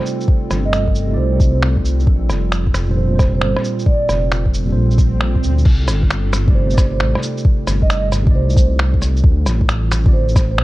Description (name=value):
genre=future garage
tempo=134 BPM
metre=4/4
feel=swing 66% on 16ths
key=C dorian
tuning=A4 = 440 Hz
part: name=tine electric piano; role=accompaniment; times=0.0-10.3 s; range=Bb2 to D5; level=-24 LUFS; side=right 2 dB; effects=overdrive, vintage 12-bit sampler grit, sidechain pumping, analog delay
part: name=warbly tape-like pad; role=sustained chords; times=0.0-10.6 s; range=G3 to A4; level=-27 LUFS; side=equal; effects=chorus, built-in reverb, sidechain pumping
part: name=lo-fi sampler-style drum kit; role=drums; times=0.1-10.6 s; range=cabasa, crash cymbal, finger snaps, rim click, shaker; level=-23 LUFS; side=equal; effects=none
part: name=electronic kick drum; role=drums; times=0.3-10.5 s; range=none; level=-14 LUFS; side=equal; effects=overdrive
part: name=dark detuned saw bass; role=bass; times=0.5-10.6 s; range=F1 to D2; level=-17 LUFS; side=equal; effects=sidechain pumping
part: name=vibraphone with soft mallets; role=melody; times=0.7-10.6 s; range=C5 to Eb5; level=-24 LUFS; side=right 4 dB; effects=tape echo
part: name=swell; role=sound effects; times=4.9-5.7 s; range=none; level=-28 LUFS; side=right 5 dB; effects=none
room=little or no reverb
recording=cassette tape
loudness=-13 LUFS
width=side -18 dB against mid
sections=0.0-5.7 A section; 5.7-10.6 B section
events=swell 4.9-5.7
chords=0.0 Cm69; 2.1 Bb69; 5.7 Cm69; 9.2 Dm7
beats=| 0.28 0.73 1.18 1.62 | 2.07 2.52 2.97 3.42 | 3.86 4.31 4.76 5.21 | 5.65 6.10 6.55 7.00 | 7.45 7.89 8.34 8.79 | 9.24 9.68 10.13 10.58